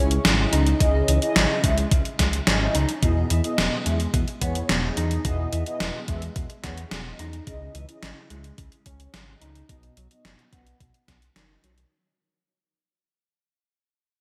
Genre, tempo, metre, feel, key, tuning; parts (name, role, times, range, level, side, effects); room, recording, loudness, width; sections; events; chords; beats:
synthwave; 108 BPM; 4/4; straight; C# minor; A4 = 440 Hz
electric guitar at the edge of break-up; arpeggios; 0.0-11.7 s; B2 to D#4; -34 LUFS; equal; low-pass filter, delay
mellow synth brass; stabs; 0.0-11.6 s; B3 to F#5; -32 LUFS; equal; chorus, phaser, delay
dark detuned saw bass; bass; 0.0-11.9 s; E1 to E2; -27 LUFS; equal
gated 80s digital drum machine; drums; 0.1-11.9 s; hi-hat, snare drum; -27 LUFS; equal; gated reverb, gated reverb snare, overdrive, studio reverb
electronic kick drum; drums; 0.8-11.2 s; -27 LUFS; equal; overdrive, studio reverb
moderate plate reverb, RT60 2.2 s; bright 1980s-style digital production; -23 LUFS; mono
0.0-11.9 A section
fade-out 0.0-11.9; filter sweep on detuned saw bass 0.0-11.9; filter sweep on clean electric guitar 0.0-11.9
0.0 C#madd9; 3.0 Emaj7; 7.5 C#madd9; 9.7 B
0.25 | 0.80 1.36 1.92 2.47 | 3.03 3.58 4.14 4.69 | 5.25 5.80 6.36 6.92 | 7.47 8.03 8.58 9.14 | 9.69 10.25 10.80 11.36